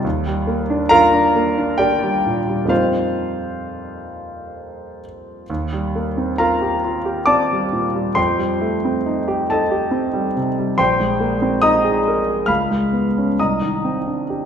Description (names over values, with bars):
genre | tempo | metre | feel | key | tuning
classical, impressionist solo piano | 63-71 BPM | 3/4 | rubato | Eb lydian | A4 = 438 Hz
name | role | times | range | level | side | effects
warm concert grand piano | solo | 0.0-14.5 s | Bb1 to F6 | -16 LUFS | equal | none
room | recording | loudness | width
wet concert hall reverb, RT60 1.9 s | minimal, uncompressed stereo recording | -16 LUFS | side -8 dB against mid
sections
0.0-14.5 A section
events
none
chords
0.0 Ebmaj9; 2.7 F9sus4; 5.5 Eb69; 8.2 F9; 10.8 Bb9sus4; 12.5 Db7; 13.4 Cmadd9